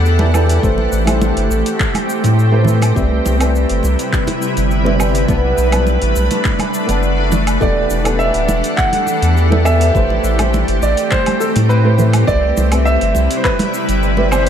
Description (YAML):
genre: sunset chillout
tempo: 103 BPM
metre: 4/4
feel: straight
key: E minor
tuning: A4 = 440 Hz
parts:
  - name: shimmering ambient pad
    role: sustained chords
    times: 0.0-14.5 s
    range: C3 to F#5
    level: -19 LUFS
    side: equal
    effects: chorus, built-in reverb
  - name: round analog bass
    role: bass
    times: 0.0-14.5 s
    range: D1 to A2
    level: -15 LUFS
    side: equal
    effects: none
  - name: deep house drum kit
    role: drums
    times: 0.1-14.5 s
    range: cabasa, handclaps, hi-hat, woodblock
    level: -24 LUFS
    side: right 1 dB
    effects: small room reverb
  - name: flamenco guitar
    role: accompaniment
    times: 0.2-14.5 s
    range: E3 to A5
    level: -20 LUFS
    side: right 1 dB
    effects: auto-pan, tape echo
  - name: congas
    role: percussion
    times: 0.2-14.3 s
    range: none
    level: -24 LUFS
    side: right 4 dB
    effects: none
  - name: electronic kick drum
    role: drums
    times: 0.6-13.6 s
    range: none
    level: -19 LUFS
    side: equal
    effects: small room reverb
  - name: clear grand piano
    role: melody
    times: 7.6-14.5 s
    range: A4 to F#5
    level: -18 LUFS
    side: right 2 dB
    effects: ping-pong delay
room: moderate plate reverb, RT60 1.5 s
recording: dreamy mix soaked in reverb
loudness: -12 LUFS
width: side -9 dB against mid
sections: 0.0-14.5 A section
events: none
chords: 0.0 Em11; 0.6 Am9; 3.0 Cmaj7; 5.3 Bm7; 7.6 Em11; 9.9 Am9; 12.3 Cmaj7